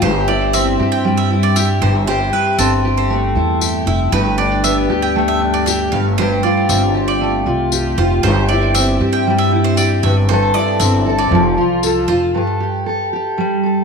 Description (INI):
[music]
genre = acoustic pop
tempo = 117 BPM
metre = 4/4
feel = straight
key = G mixolydian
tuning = A4 = 440 Hz
[part]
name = fingerpicked steel-string acoustic guitar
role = accompaniment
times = 0.0-13.8 s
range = G2 to A4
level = -15 LUFS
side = equal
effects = double-tracked left and right
[part]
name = bowl-back mandolin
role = arpeggios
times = 0.0-12.2 s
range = A4 to G5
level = -22 LUFS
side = right 7 dB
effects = tape echo
[part]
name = upright bass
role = bass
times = 0.0-12.3 s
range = F1 to G2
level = -19 LUFS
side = left 1 dB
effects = none
[part]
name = tambourine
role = percussion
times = 0.5-11.9 s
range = none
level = -24 LUFS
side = left 12 dB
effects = none
[sound]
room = moderate echo chamber reverb, RT60 1.6 s, studio reverb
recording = 1960s-style stereo with parts hard left and right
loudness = -13 LUFS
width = side -5 dB against mid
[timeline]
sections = 0.0-12.3 A section; 12.3-13.8 B section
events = none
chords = 0.0 C/G; 1.8 Am/G; 4.1 Gadd9; 5.9 F/G; 8.2 C/G; 10.0 Am/G; 11.3 F; 12.3 Gsus2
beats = | 0.02 0.53 1.04 1.56 | 2.07 2.58 3.10 3.61 | 4.12 4.64 5.15 5.67 | 6.18 6.69 7.21 7.72 | 8.23 8.75 9.26 9.77 | 10.29 10.80 11.31 11.83 | 12.34 12.85 13.37